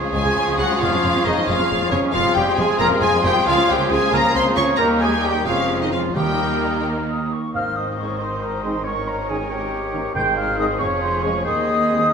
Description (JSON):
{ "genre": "classical", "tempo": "90 BPM (dotted quarters)", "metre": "6/8", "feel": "straight", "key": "Ab major", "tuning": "A4 = 439 Hz", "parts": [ { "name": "concert flute", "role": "second line", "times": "0.0-12.1 s", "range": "G5 to G6", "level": "-27 LUFS", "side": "left 1 dB", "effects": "none" }, { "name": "rich studio violin section", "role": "second line", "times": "0.0-12.1 s", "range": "Bb3 to Ab4", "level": "-29 LUFS", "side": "left 3 dB", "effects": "none" }, { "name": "warm oboe", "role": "second line", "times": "0.0-12.1 s", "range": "G4 to Eb5", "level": "-29 LUFS", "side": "right 1 dB", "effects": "none" }, { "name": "clear bassoon", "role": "accompaniment", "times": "0.0-12.1 s", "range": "Eb3 to F3", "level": "-30 LUFS", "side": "right 1 dB", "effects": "none" }, { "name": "rich symphonic viola section", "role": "accompaniment", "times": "0.0-12.1 s", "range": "C3 to Db4", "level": "-30 LUFS", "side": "equal", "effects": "none" }, { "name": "rich studio cello section", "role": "bass", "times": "0.0-12.1 s", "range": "Db2 to Ab2", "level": "-28 LUFS", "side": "right 1 dB", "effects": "none" }, { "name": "clear symphonic violin section", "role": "melody", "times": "0.1-12.1 s", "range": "Ab4 to Db6", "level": "-24 LUFS", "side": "left 2 dB", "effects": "none" }, { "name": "warm clarinet", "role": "second line", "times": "0.1-12.1 s", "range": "Db4 to Db5", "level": "-28 LUFS", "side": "left 1 dB", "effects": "none" }, { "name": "mellow French horn section", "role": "sustained chords", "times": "0.1-12.0 s", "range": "Db3 to Ab4", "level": "-28 LUFS", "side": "left 3 dB", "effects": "none" }, { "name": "dark trumpet section", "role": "stabs", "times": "0.1-12.1 s", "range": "Db4 to G5", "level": "-24 LUFS", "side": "right 1 dB", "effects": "none" }, { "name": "rich symphonic double bass section", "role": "bass", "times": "0.1-12.1 s", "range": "F1 to Eb2", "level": "-29 LUFS", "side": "right 3 dB", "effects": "none" }, { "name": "timpani", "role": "percussion", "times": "6.2-10.8 s", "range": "Ab2 to Eb3", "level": "-31 LUFS", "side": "right 1 dB", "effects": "none" }, { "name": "warm trombone section", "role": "sustained chords", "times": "8.0-12.0 s", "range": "Eb3 to Bb3", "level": "-33 LUFS", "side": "right 3 dB", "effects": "none" } ], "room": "wet recital hall reverb, RT60 1.7 s", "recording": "minimal, uncompressed stereo recording", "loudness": "-17 LUFS", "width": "side -6 dB against mid", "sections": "0.0-7.5 A section; 7.5-12.1 B section", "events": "none", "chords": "0.0 Db; 0.8 Db/F; 2.1 Fm; 3.5 Bbm7/Db; 4.8 Eb; 5.5 Db/F; 6.2 Eb; 7.5 Ab; 8.9 Eb7/Ab; 10.2 Ab; 10.8 Db/F; 11.5 Ab/Eb" }